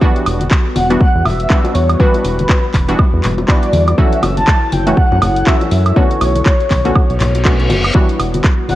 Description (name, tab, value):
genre	deep house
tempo	121 BPM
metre	4/4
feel	swing 58% on 16ths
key	E dorian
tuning	A4 = 440 Hz
part	warbly tape-like pad	sustained chords	0.0-8.8 s	G3 to C#5	-23 LUFS	left 3 dB	chorus, built-in reverb, sidechain pumping
part	filtered dub chord stab	stabs	0.0-8.8 s	D3 to F#4	-20 LUFS	equal	chorus, sidechain pumping, tape echo
part	electronic kick drum	drums	0.0-8.6 s	none	-12 LUFS	equal	none
part	house drum kit	drums	0.2-8.8 s	handclaps, hi-hat, woodblock	-21 LUFS	right 1 dB	none
part	round analog bass	bass	0.3-8.8 s	E1 to F#2	-16 LUFS	equal	sidechain pumping
part	congas and bongos	percussion	0.4-8.8 s	none	-22 LUFS	left 2 dB	none
part	breathy flute-like synth lead	melody	0.8-8.8 s	B4 to A5	-19 LUFS	equal	ensemble chorus, tape echo
part	reverse cymbal	sound effects	7.2-7.9 s	none	-22 LUFS	left 1 dB	none
room	digital ambience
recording	cassette tape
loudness	-11 LUFS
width	side -15 dB against mid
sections	0.0-8.8 A section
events	reverse cymbal 7.2-7.9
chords	0.0 Em9; 4.0 F#m7; 6.0 Bm9; 7.9 Em9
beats	| 0.01 0.51 1.00 1.50 | 2.00 2.49 2.99 3.48 | 3.98 4.48 4.97 5.47 | 5.96 6.46 6.96 7.45 | 7.95 8.44